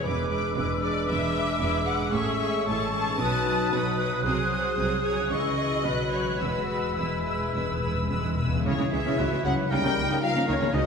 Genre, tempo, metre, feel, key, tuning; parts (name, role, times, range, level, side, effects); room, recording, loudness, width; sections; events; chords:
classical, dramatic, fast romantic movement for symphony orchestra; 104-119 BPM; 4/4; rubato; E major; A4 = 440 Hz
warm symphonic violin section; melody; 0.0-10.9 s; C#5 to F#6; -34 LUFS; left 4 dB
rich symphonic violin section; second line; 0.0-10.9 s; D#4 to A5; -32 LUFS; left 2 dB
rich symphonic viola section; accompaniment; 0.0-10.8 s; E3 to B4; -32 LUFS; right 2 dB
mellow French horn section; sustained chords; 0.0-10.9 s; C#3 to B4; -33 LUFS; left 2 dB
concert harp; arpeggios; 0.0-10.9 s; A2 to C#5; -35 LUFS; left 2 dB
dark clarinet; second line; 0.1-10.9 s; D#4 to G#4; -36 LUFS; equal
large flute ensemble; second line; 0.1-10.9 s; C#5 to F#6; -34 LUFS; left 3 dB
warm oboe; second line; 0.1-10.9 s; G#4 to D#6; -34 LUFS; right 1 dB
rich symphonic cello section; bass; 0.1-10.8 s; E2 to C#3; -34 LUFS; right 3 dB
rich symphonic double bass section; bass; 0.1-10.8 s; E1 to C#2; -33 LUFS; right 2 dB
timpani; percussion; 0.1-0.8, 6.4-8.6 s; E2; -32 LUFS; left 1 dB
wet scoring stage reverb, RT60 1.7 s; recorded in a church or concert hall; -24 LUFS; side -6 dB against mid
0.0-8.7 A section; 8.7-10.9 B section
timpani fill 6.4-8.7
0.1 E7; 2.1 Amaj7; 3.2 B; 4.3 G#7/B#; 5.3 C#m; 5.9 B; 6.4 E; 8.7 C#m; 9.7 D#7/C#